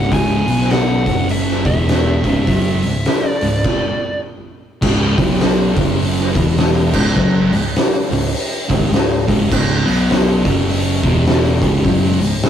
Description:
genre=stoner and doom metal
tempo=102 BPM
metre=4/4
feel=swing 61% on 8ths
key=C# minor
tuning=A4 = 440 Hz
part: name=fuzz lead guitar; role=melody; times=0.0-4.2 s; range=E5 to G#5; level=-23 LUFS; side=right 1 dB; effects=distortion
part: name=thick fuzz guitar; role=riff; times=0.0-12.4 s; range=C#2 to B3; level=-17 LUFS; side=equal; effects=distortion
part: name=overdriven picked electric bass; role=bass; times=0.0-12.4 s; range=C#1 to B1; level=-22 LUFS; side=equal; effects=none
part: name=oversized low-tuned drum kit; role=drums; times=0.1-12.5 s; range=crash cymbal, hi-hat, kick drum, snare drum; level=-17 LUFS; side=equal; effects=none
room=moderate studio ambience, RT60 0.5 s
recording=rough rehearsal-room recording, tube saturation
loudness=-13 LUFS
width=side -9 dB against mid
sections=0.0-4.8 A section; 4.8-12.5 B section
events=stop 3.6-4.8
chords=0.4 B5; 1.0 F#5; 1.6 E5; 2.2 C#m; 3.6 N.C.; 4.8 C#5; 5.1 B5; 5.7 F#5; 6.3 E5; 6.9 C#5; 9.8 B5; 10.4 F#5; 11.0 E5; 11.6 C#5

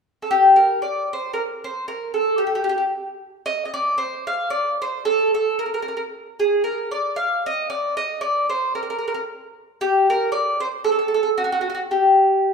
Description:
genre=italian folk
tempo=114 BPM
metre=3/4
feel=swing 55% on 8ths, rubato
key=G minor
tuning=A4 = 437 Hz
part: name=mandolin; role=solo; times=0.2-12.5 s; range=F#4 to F5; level=-18 LUFS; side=equal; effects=none
room=wet recital hall reverb, RT60 1.5 s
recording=none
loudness=-19 LUFS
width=side -5 dB against mid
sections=0.8-12.5 A section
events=none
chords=none

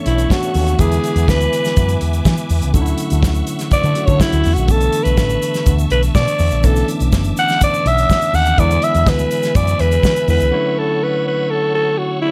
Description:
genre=disco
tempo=123 BPM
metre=4/4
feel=straight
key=B dorian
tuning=A4 = 440 Hz
part: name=overdriven tine electric piano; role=accompaniment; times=0.0-12.3 s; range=D3 to F#4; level=-24 LUFS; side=equal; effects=none
part: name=bright tonewheel organ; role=sustained chords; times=0.0-12.3 s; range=A4 to E6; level=-32 LUFS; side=equal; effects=overdrive, chorus vibrato, stopped rotary speaker
part: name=breathy alto saxophone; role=melody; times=0.1-12.3 s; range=E4 to F#5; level=-20 LUFS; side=equal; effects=slapback echo
part: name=picked electric bass with an envelope filter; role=bass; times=0.1-10.5 s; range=F#1 to E3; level=-19 LUFS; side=equal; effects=none
part: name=warm soul drum kit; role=drums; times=0.1-10.5 s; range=hi-hat, kick drum, snare drum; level=-21 LUFS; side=equal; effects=none
part: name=egg shaker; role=percussion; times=0.2-10.5 s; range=none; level=-38 LUFS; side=equal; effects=none
room=light reverb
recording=none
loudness=-16 LUFS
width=mono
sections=0.0-12.3 A section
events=alto saxophone solo 0.0-12.3; break 10.5-12.3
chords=0.0 Bm11; 0.8 E7; 2.7 Dmaj9; 4.7 Bm11; 8.6 E7; 10.5 Dmaj9

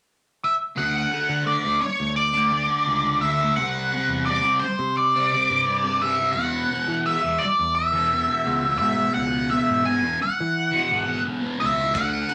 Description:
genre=psychedelic rock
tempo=86 BPM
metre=4/4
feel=straight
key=unclear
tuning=A4 = 440 Hz
part: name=octave-fuzz lead guitar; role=melody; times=0.4-12.3 s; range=C5 to G#5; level=-24 LUFS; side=equal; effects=wah, distortion
part: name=thick fuzz guitar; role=riff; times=0.8-12.3 s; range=E2 to D4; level=-29 LUFS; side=equal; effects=distortion, phaser
part: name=growling picked electric bass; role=bass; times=0.8-12.2 s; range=G#1 to E3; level=-33 LUFS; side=equal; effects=overdrive
part: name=cloth-damped thuddy drum kit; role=drums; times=11.9-12.3 s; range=kick drum, ride cymbal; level=-37 LUFS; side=equal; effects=none
part: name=maracas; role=percussion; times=11.9-12.3 s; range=none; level=-48 LUFS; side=equal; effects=none
room=wet club reverb, RT60 0.9 s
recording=none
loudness=-22 LUFS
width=mono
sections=0.8-12.3 A section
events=none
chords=0.0 N.C.; 0.8 Dmaj7; 3.6 Cadd9; 6.4 E

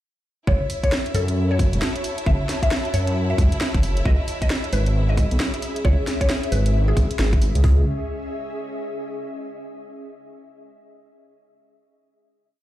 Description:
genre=UK garage, two-step garage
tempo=134 BPM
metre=4/4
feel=swing 62% on 16ths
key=C# minor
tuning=A4 = 440 Hz
part: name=mallet-like synth pluck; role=melody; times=0.5-7.8 s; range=G#4 to E5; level=-29 LUFS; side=left 1 dB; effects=ensemble chorus, dub echo
part: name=clear chamber violin section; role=sustained chords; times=0.5-7.6 s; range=E4 to E5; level=-34 LUFS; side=equal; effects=sidechain pumping
part: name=dark detuned saw bass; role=bass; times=0.5-7.8 s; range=E1 to F#2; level=-19 LUFS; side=equal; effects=none
part: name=garage drum kit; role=drums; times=0.5-7.8 s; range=hi-hat, kick drum, toms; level=-20 LUFS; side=equal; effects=overdrive
part: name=ethereal airy pad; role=texture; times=1.1-9.4 s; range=C#4 to A5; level=-31 LUFS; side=left 1 dB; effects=ensemble chorus, built-in reverb, tremolo, sidechain pumping
part: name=garage drum kit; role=drums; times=0.7-7.6 s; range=hi-hat, snare drum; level=-28 LUFS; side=equal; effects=overdrive
room=digital ambience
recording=played on a big sound system in a bare room, large studio reverb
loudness=-19 LUFS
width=side -14 dB against mid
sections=0.5-7.6 drop; 7.6-9.4 final chord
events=drop 0.5-7.6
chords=0.5 F#m7; 4.1 C#m; 7.6 C#madd9

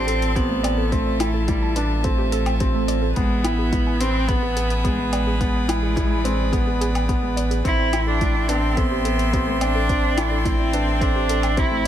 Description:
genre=piano and strings electronica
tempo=107 BPM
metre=4/4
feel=straight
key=A minor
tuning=A4 = 439 Hz
part: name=warm cello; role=melody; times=0.0-11.9 s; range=G3 to E4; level=-25 LUFS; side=equal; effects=none
part: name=rich string quartet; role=sustained chords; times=0.0-11.9 s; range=F4 to C6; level=-29 LUFS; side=equal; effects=none
part: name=warbly dusty pluck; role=arpeggios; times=0.0-11.9 s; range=G#3 to A5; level=-32 LUFS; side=right 3 dB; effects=chorus, sidechain pumping, digital delay
part: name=felt-muted upright piano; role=riff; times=0.0-11.9 s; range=B3 to E4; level=-25 LUFS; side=equal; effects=digital delay
part: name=warm sub bass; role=bass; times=0.0-11.9 s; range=A1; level=-24 LUFS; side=equal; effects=sidechain pumping
part: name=electronic hi-hat and woodblock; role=drums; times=0.1-11.9 s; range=none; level=-31 LUFS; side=left 1 dB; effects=none
part: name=electronic kick drum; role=drums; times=0.4-11.7 s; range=none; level=-24 LUFS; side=equal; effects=none
room=light reverb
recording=none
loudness=-18 LUFS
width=side -10 dB against mid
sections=0.0-11.9 A section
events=none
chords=0.0 F/A; 3.2 E/A; 7.6 Am11

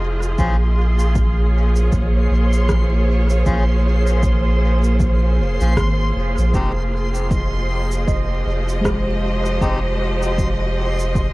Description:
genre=ambient dub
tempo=78 BPM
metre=4/4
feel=swing 58% on 16ths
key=unclear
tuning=A4 = 437 Hz
part: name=rich studio string section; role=sustained chords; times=0.0-11.3 s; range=F3 to Eb5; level=-24 LUFS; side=right 1 dB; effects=none
part: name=soft dub sub bass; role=bass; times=0.0-11.3 s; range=F1 to Bb1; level=-18 LUFS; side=equal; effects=none
part: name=backwards swelling texture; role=texture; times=0.0-11.3 s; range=C6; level=-31 LUFS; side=equal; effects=built-in reverb
part: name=electronic shaker and rim click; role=drums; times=0.2-11.3 s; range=none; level=-30 LUFS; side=right 1 dB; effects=dub echo
part: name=melodica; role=stabs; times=0.4-9.8 s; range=Ab3 to C5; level=-30 LUFS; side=left 2 dB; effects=vintage 12-bit sampler grit, dub echo
part: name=electronic kick drum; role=drums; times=0.4-11.3 s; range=none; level=-22 LUFS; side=equal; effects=none
part: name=handpan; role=arpeggios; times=8.1-11.3 s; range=Ab3 to Eb5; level=-28 LUFS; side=equal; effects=analog delay
room=little or no reverb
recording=echo-heavy mix, vinyl crackle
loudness=-16 LUFS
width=side -21 dB against mid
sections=0.0-11.3 A section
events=none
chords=0.4 Bbm7; 6.5 Fm7

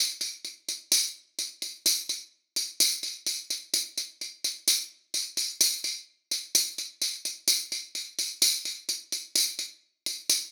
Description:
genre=pop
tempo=128 BPM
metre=4/4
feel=straight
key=none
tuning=none
part: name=tambourine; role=percussion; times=0.2-10.4 s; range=none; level=-26 LUFS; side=equal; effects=none
room=moderate studio reverb, RT60 0.6 s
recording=rough home demo mix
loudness=-28 LUFS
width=mono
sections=0.5-10.5 A section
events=none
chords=none

